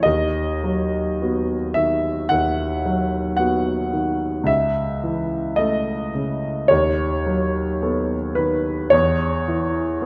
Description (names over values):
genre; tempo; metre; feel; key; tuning
classical, romantic nocturne for solo piano; 54 BPM; 4/4; rubato; unclear; A4 = 440 Hz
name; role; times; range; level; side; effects
warm grand piano; solo; 0.0-10.1 s; C#2 to F#5; -21 LUFS; equal; none
room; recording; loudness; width
moderate recital hall reverb, RT60 1.6 s; none; -21 LUFS; mono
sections
0.0-10.1 A section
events
none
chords
0.0 B/D#; 4.5 A/C#; 6.7 B7/D#; 8.9 N.C.